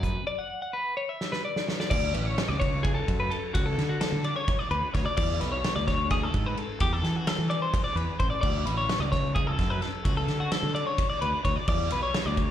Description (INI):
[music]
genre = math rock and midwest emo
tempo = 258 BPM (eighths)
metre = 7/8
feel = straight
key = D lydian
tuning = A4 = 440 Hz
[part]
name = twelve-string electric guitar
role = arpeggios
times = 0.0-12.5 s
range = F#4 to F#5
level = -30 LUFS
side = left 3 dB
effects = slapback echo
[part]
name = fuzz fingered electric bass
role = bass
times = 0.0-12.5 s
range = A1 to E3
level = -29 LUFS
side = equal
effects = overdrive
[part]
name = loose indie drum kit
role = drums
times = 0.0-12.5 s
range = crash cymbal, hi-hat, kick drum, ride cymbal, snare drum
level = -29 LUFS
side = right 1 dB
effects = none
[sound]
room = studio reverb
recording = live gig heard through the venue's PA, club reverb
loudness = -25 LUFS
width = side -11 dB against mid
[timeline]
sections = 0.0-1.9 A section; 1.9-12.5 B section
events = break 0.3-1.9; drum fill 1.2-1.9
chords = 0.3 Dmaj9; 1.9 Dmaj7; 5.2 E7; 6.8 C6/E; 8.4 Dmaj7; 11.7 E7(no3)